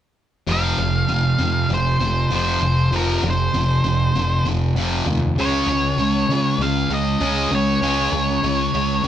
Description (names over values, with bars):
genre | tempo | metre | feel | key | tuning
rock | 98 BPM | 4/4 | straight | F minor | A4 = 438 Hz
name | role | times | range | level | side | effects
octave-fuzz lead guitar | melody | 0.5-9.1 s | Bb4 to F5 | -22 LUFS | equal | distortion
thick fuzz guitar | riff | 0.5-9.1 s | F2 to Db4 | -19 LUFS | equal | distortion
growling picked electric bass | bass | 0.5-9.1 s | F1 to Db3 | -24 LUFS | equal | overdrive
room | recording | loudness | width
moderate large studio reverb, RT60 1.4 s | band playing live in one room | -17 LUFS | side -10 dB against mid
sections
0.5-9.1 A section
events
none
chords
0.5 F5; 5.4 Db5